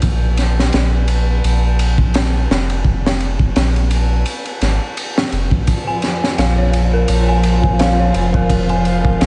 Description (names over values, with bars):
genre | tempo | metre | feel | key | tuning
trip hop | 85 BPM | 4/4 | swing 57% on 16ths | Bb minor | A4 = 442 Hz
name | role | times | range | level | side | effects
soft dub sub bass | bass | 0.0-9.3 s | F1 to Bb1 | -18 LUFS | equal | none
crunchy breakbeat drum kit | drums | 0.0-9.3 s | kick drum, ride cymbal, snare drum | -20 LUFS | equal | none
string machine, cellos | sustained chords | 5.7-9.3 s | F3 to F4 | -22 LUFS | equal | ensemble chorus, vintage 12-bit sampler grit
dark detuned synth bell | arpeggios | 5.9-9.3 s | Bb4 to Ab5 | -23 LUFS | equal | chorus, phaser, diffuse ambient delay
room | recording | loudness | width
moderate huge ambient reverb, RT60 8.0 s | dreamy mix soaked in reverb, vinyl crackle, nothing above 10.3 kHz | -16 LUFS | mono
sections
0.0-9.3 A section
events
none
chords
0.0 Fsus4; 5.7 Bbm7